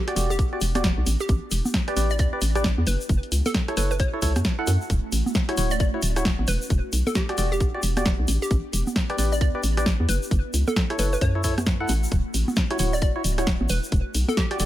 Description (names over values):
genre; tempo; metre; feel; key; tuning
UK garage, two-step garage; 133 BPM; 4/4; swing 61% on 16ths; E dorian; A4 = 440 Hz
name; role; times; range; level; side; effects
hollow square pluck; melody; 0.0-14.6 s; G4 to D5; -31 LUFS; equal; chorus, cassette tape, analog delay
ethereal airy pad; sustained chords; 0.0-14.7 s; A3 to G4; -37 LUFS; right 1 dB; ensemble chorus, built-in reverb, phaser, sidechain pumping
percussive organ stab; stabs; 0.1-14.7 s; E4 to F#5; -29 LUFS; equal; chorus, analog delay
punchy analog drum machine; drums; 0.1-14.7 s; congas, hi-hat, rim click, snare drum; -27 LUFS; equal; analog delay
hollow knocking FM bass; bass; 0.2-14.7 s; D1 to F#2; -24 LUFS; equal; none
tube shaker; percussion; 0.2-14.7 s; none; -35 LUFS; left 2 dB; none
electronic kick drum; drums; 0.4-14.5 s; none; -24 LUFS; equal; none
room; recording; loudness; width
little or no reverb; echo-heavy mix; -21 LUFS; side -14 dB against mid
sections
0.0-14.7 A section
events
none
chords
0.0 Em7; 1.1 A7sus4; 2.9 F#m7; 4.9 Dmaj7; 6.5 Em7; 8.3 A7sus4; 10.1 F#m7; 12.1 Dmaj7; 13.7 Em7